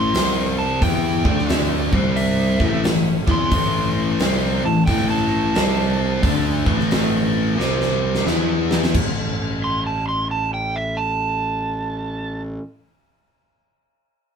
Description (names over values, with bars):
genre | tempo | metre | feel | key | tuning
blues rock power trio and southern rock | 89 BPM | 4/4 | swing 64% on 8ths | unclear | A4 = 440 Hz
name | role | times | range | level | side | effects
overdriven slide guitar | melody | 0.0-12.4 s | E5 to C6 | -24 LUFS | right 3 dB | none
biting overdriven guitar | riff | 0.0-8.9 s | A2 to E4 | -20 LUFS | left 1 dB | spring reverb
fuzz picked electric bass | bass | 0.0-12.6 s | A1 to E2 | -25 LUFS | equal | overdrive
huge arena drum kit | drums | 0.1-9.1 s | crash cymbal, hi-hat, kick drum, snare drum | -22 LUFS | equal | none
room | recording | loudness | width
moderate small room reverb, RT60 0.6 s | band playing live in one room | -17 LUFS | side -7 dB against mid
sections
0.0-8.9 A section; 8.9-11.7 B section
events
electric slide guitar solo 0.0-8.9; drum fill 7.6-8.9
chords
0.1 C5; 0.8 Em; 1.2 D5; 1.8 C5; 2.5 A5; 5.6 C5; 6.2 A5; 7.6 C5; 8.3 E5; 8.9 N.C.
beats
0.15 | 0.82 1.50 2.17 2.85 | 3.53 4.20 4.88 5.56 | 6.24 6.91 7.59 8.27 | 8.95 9.63 10.30 10.98